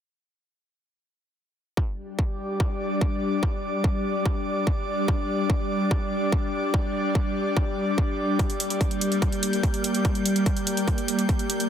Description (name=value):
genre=psychedelic trance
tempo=145 BPM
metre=4/4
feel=straight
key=G minor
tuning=A4 = 439 Hz
part: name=evolving wavetable pad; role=sustained chords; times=2.1-11.7 s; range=G3 to D4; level=-27 LUFS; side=equal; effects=ensemble chorus, built-in reverb, phaser, sidechain pumping
part: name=electronic kick drum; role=drums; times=1.8-11.4 s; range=none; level=-25 LUFS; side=equal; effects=distortion, overdrive
part: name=airy breathy pad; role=texture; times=1.8-11.7 s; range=G3 to G6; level=-29 LUFS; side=left 1 dB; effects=chorus, sidechain pumping
part: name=electronic hi-hat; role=drums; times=8.4-11.7 s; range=none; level=-30 LUFS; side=right 2 dB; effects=overdrive
room=light reverb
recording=dense, heavily limited modern master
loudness=-23 LUFS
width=side -9 dB against mid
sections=1.8-11.7 A section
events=none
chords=1.8 G5